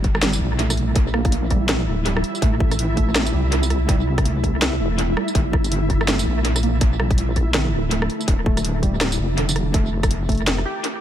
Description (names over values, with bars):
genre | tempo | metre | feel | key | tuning
half-time drum and bass | 164 BPM | 4/4 | swing 60% on 16ths, half-time | G dorian | A4 = 440 Hz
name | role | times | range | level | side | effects
deep soft wobble bass | bass | 0.0-10.6 s | D1 to C2 | -22 LUFS | equal | chorus
drum and bass drum kit | drums | 0.0-10.9 s | hi-hat, rim click, snare drum, tambourine | -24 LUFS | equal | dub echo
electronic kick drum | drums | 0.0-10.4 s | none | -19 LUFS | equal | none
flickering grainy texture | texture | 0.0-11.0 s | E4 | -28 LUFS | equal | built-in reverb
warbly dusty pluck | arpeggios | 0.2-10.8 s | D3 to G4 | -27 LUFS | right 4 dB | analog chorus, tape echo
room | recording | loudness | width
little or no reverb | echo-heavy mix | -18 LUFS | side -11 dB against mid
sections
0.0-11.0 A section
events
none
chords
0.0 Gm; 2.4 Am; 5.3 Gm; 8.3 Dm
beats
0.23 0.59 | 0.96 1.32 1.69 2.06 | 2.42 2.79 3.15 3.52 | 3.88 4.25 4.62 4.98 | 5.35 5.71 6.08 6.45 | 6.81 7.18 7.54 7.91 | 8.28 8.64 9.01 9.37 | 9.74 10.11 10.47 10.84